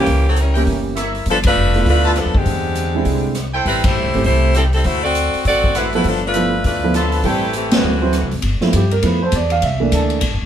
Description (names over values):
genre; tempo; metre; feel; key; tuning
jazz, big band swing; 201 BPM; 4/4; swing 62% on 8ths; G mixolydian; A4 = 440 Hz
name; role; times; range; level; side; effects
edgy saxophone section; melody; 0.0-8.3 s; D3 to D5; -18 LUFS; left 1 dB; none
warm grand piano; accompaniment; 0.0-10.2 s; D3 to F5; -20 LUFS; right 3 dB; none
clear trumpet section; stabs; 0.0-7.8 s; E4 to A5; -24 LUFS; equal; none
upright bass; bass; 0.0-10.5 s; E1 to G2; -19 LUFS; equal; none
swinging big-band drum kit; drums; 0.1-10.3 s; hi-hat, kick drum, ride cymbal, rim click, snare drum; -22 LUFS; equal; none
bright trombone section; sustained chords; 9.2-10.4 s; E3 to A4; -27 LUFS; left 4 dB; none
room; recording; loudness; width
moderate studio reverb, RT60 0.9 s; band playing live in one room; -14 LUFS; side -10 dB against mid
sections
0.0-8.4 A section; 8.4-10.5 B section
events
band accent 1.4, 3.8, 7.7; grand piano solo 8.4-10.5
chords
0.1 C#dim7; 1.3 G13; 2.5 E7alt; 3.7 Am7; 4.9 D13; 6.0 G13; 7.2 Am7; 7.8 D9; 8.4 G13; 9.6 C13